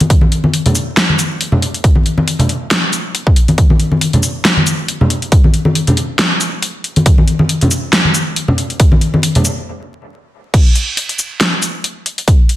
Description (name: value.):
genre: dubstep.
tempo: 138 BPM.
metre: 4/4.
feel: swing 56% on 16ths, half-time.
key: none.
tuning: none.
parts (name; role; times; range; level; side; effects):
dubstep drum kit; drums; 0.0-12.6 s; crash cymbal, hi-hat, shaker, snare drum; -15 LUFS; equal; none.
congas; percussion; 0.0-9.4 s; none; -14 LUFS; left 1 dB; none.
electronic kick drum; drums; 0.1-12.4 s; none; -9 LUFS; equal; none.
room: moderate digital room reverb, RT60 1.1 s, digital ambience.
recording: dense, heavily limited modern master, vinyl crackle.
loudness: -11 LUFS.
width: side -14 dB against mid.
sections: 0.0-10.5 A section; 10.5-12.6 B section.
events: build-up 0.0-10.5; stop 9.7-10.5; drop 10.5-12.6.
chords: none.